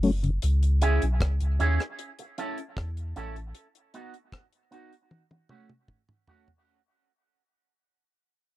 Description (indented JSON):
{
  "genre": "dub reggae",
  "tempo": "77 BPM",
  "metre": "4/4",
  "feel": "straight",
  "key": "unclear",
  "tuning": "A4 = 441 Hz",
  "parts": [
    { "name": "warm sub bass", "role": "bass", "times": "0.0-3.5 s", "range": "F#1 to E2", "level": "-24 LUFS", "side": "equal", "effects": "none" },
    { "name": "deep reggae drum kit", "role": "drums", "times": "0.0-6.7 s", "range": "hi-hat, kick drum, rim click, toms", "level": "-34 LUFS", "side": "left 1 dB", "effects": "none" },
    { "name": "electric guitar with an envelope filter", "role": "accompaniment", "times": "0.8-6.5 s", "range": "A3 to A4", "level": "-31 LUFS", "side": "right 4 dB", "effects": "analog chorus, dub echo" }
  ],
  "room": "little or no reverb",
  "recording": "dry, close 1970s-style studio recording",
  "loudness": "-24 LUFS",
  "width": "side -16 dB against mid",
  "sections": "0.0-6.7 A section",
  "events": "break 0.0-0.4, 3.5-6.7; fade-out 0.0-6.7; drum fill 5.1-6.7",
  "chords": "0.4 C#m; 2.0 A; 3.5 B; 5.1 F#m",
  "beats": "| 0.42 1.20 1.98 2.76 | 3.54 4.32 5.10 5.88"
}